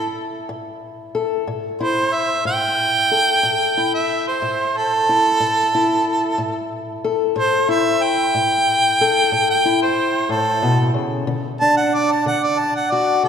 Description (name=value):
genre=acoustic country blues, solo or duo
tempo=61 BPM (dotted quarters)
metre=12/8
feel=straight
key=unclear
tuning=A4 = 441 Hz
part: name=warm harmonica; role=melody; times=0.0-13.3 s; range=A4 to A5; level=-17 LUFS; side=right 2 dB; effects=none
part: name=fingerpicked old ladder-braced acoustic guitar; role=accompaniment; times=0.0-13.3 s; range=A2 to A4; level=-21 LUFS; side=left 3 dB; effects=none
room=wet church reverb, RT60 2.7 s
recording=recorded in a church or concert hall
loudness=-16 LUFS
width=side -7 dB against mid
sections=0.0-13.3 A section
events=harmonica solo 0.0-13.3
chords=0.0 A5; 11.3 D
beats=0.50 1.48 2.46 | 3.44 4.43 5.41 6.39 | 7.37 8.35 9.33 10.31 | 11.29 12.27 13.24